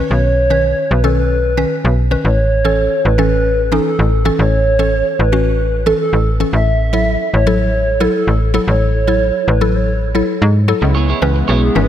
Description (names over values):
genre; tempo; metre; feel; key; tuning
pop; 112 BPM; 4/4; straight; unclear; A4 = 436 Hz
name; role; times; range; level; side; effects
mallet-like synth pluck; accompaniment; 0.0-11.9 s; D#3 to B4; -18 LUFS; left 1 dB; chorus, phaser
slap-like FM bass; bass; 0.0-11.9 s; G#1 to G#2; -14 LUFS; equal; none
hollow clarinet-like synth lead; melody; 0.1-11.9 s; G#4 to E5; -17 LUFS; right 1 dB; chorus, diffuse ambient delay
soft supersaw; sustained chords; 10.8-11.9 s; C#3 to E4; -19 LUFS; equal; none
clean electric guitar; riff; 10.8-11.8 s; B3 to C#5; -21 LUFS; right 7 dB; lush chorus
room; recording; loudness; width
moderate lush hall reverb, RT60 2.8 s; dreamy mix soaked in reverb; -12 LUFS; side -10 dB against mid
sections
0.0-10.8 A section; 10.8-11.9 B section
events
none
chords
0.0 Badd9; 2.2 A; 6.5 F#m7/A; 10.8 C#m7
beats
| 0.10 0.64 1.18 1.71 | 2.25 2.78 3.32 3.85 | 4.39 4.93 5.46 6.00 | 6.53 7.07 7.61 8.14 | 8.68 9.21 9.75 10.28 | 10.82 11.36